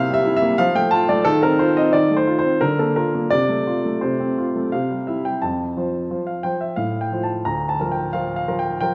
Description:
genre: classical-period piano sonatina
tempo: 89 BPM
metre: 3/4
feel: straight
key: F major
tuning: A4 = 440 Hz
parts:
  - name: warm grand piano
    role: solo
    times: 0.0-8.9 s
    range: D2 to Bb5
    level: -20 LUFS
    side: equal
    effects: none
room: moderate recital hall reverb, RT60 1.6 s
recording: worn, warbling old tape, cassette tape, warbly pitch drift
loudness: -20 LUFS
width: mono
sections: 0.0-5.4 A section; 5.4-8.9 B section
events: none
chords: 0.0 C7; 0.6 F; 1.3 F7/Eb; 2.6 Bb/D; 3.3 F/C; 4.7 C; 5.4 F; 6.8 F/A; 7.5 Bb/D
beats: 0.59 | 1.26 1.94 2.62 | 3.32 4.03 4.73 | 5.43 6.10 6.78 | 7.46 8.13 8.80

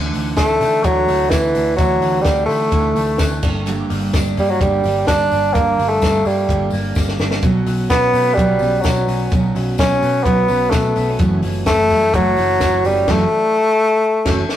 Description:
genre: jangly indie pop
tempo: 128 BPM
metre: 4/4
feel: straight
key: D major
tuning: A4 = 440 Hz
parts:
  - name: picked steel-string acoustic guitar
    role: accompaniment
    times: 0.0-14.4 s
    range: F#2 to A4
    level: -23 LUFS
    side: right 3 dB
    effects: none
  - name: electric guitar through a small old amp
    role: arpeggios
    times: 0.0-13.6 s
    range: F#2 to D4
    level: -26 LUFS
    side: left 1 dB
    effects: spring reverb
  - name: vintage muted picked electric bass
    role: bass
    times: 0.0-14.4 s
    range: F#1 to D3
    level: -23 LUFS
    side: equal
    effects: none
  - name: compact cocktail drum kit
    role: drums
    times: 0.1-14.6 s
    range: crash cymbal, hi-hat, kick drum, ride cymbal, snare drum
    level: -21 LUFS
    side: left 1 dB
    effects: none
  - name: tambourine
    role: percussion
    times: 0.2-13.0 s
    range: none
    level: -39 LUFS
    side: left 3 dB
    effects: none
  - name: clear bassoon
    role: melody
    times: 0.4-14.6 s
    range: E3 to D4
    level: -16 LUFS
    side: equal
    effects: analog delay
room: wet stone room reverb, RT60 1.0 s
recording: rough rehearsal-room recording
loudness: -14 LUFS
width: side -11 dB against mid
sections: 0.0-14.6 A section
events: drum fill 7.0-7.4, 14.0-14.6; band accent 13.1-14.6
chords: 0.0 Dsus2; 3.4 Gm; 7.4 Bsus2; 11.2 F#m7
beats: 0.38 0.85 1.32 | 1.79 2.26 2.73 3.20 | 3.67 4.14 4.61 5.08 | 5.55 6.02 6.49 6.96 | 7.43 7.90 8.38 8.85 | 9.32 9.79 10.26 10.73 | 11.20 11.67 12.14 12.62 | 13.09 13.56 14.03 14.50

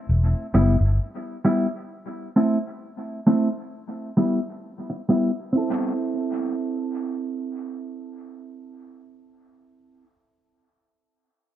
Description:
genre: reggae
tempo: 66 BPM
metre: 4/4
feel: swing 57% on 16ths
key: A minor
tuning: A4 = 440 Hz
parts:
  - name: vintage muted fingered electric bass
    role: bass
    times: 0.1-1.0 s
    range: E1 to G1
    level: -18 LUFS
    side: equal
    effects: none
  - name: mellow electric guitar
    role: accompaniment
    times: 0.5-10.1 s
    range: G3 to A4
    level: -23 LUFS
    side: right 1 dB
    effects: low-pass filter, dub echo
room: moderate spring reverb, RT60 1.8 s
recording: dark, warm production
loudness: -21 LUFS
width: side -12 dB against mid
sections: 0.0-5.5 A section; 5.5-9.2 B section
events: filter sweep on clean electric guitar 0.0-5.5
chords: 0.1 Em; 1.9 Am; 3.7 Em; 5.5 Am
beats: 0.07 0.98 | 1.89 2.80 3.71 4.62 | 5.53 6.44 7.35 8.26

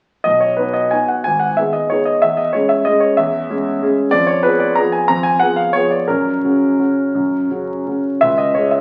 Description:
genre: classical, piano waltz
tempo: 163-200 BPM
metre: 3/4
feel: rubato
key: B major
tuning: A4 = 440 Hz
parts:
  - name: warm grand piano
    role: solo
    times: 0.2-8.8 s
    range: G#1 to A#5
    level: -16 LUFS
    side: equal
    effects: none
room: wet recital hall reverb, RT60 1.3 s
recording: very old 78 rpm record, vinyl crackle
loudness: -16 LUFS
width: mono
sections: 0.3-8.8 A section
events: none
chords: 0.3 B; 1.3 G#m; 2.2 C#m/E; 4.1 Fdim; 6.1 F#; 8.2 C#5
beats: | 0.25 0.59 0.93 | 1.25 1.58 1.91 | 2.23 2.54 2.87 | 3.18 3.49 3.82 | 4.13 4.45 4.77 | 5.09 5.42 5.75 | 6.09 6.44 6.80 | 7.15 7.50 7.87 | 8.23 8.56

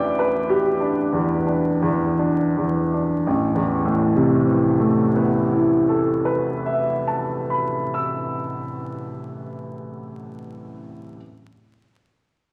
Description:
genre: classical, impressionist solo piano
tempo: 32 BPM (dotted quarters)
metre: 9/8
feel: rubato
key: A minor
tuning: A4 = 441 Hz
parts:
  - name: clear baby grand piano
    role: solo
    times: 0.0-11.2 s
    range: A1 to E6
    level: -22 LUFS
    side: equal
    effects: none
room: wet recital hall reverb, RT60 1.4 s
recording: vinyl crackle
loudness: -21 LUFS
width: mono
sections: 0.0-3.3 A section; 3.3-9.0 B section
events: slowing down 0.0-3.3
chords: 0.0 Em7/A; 3.3 Amadd9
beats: 1.13 | 3.27 5.15 7.05

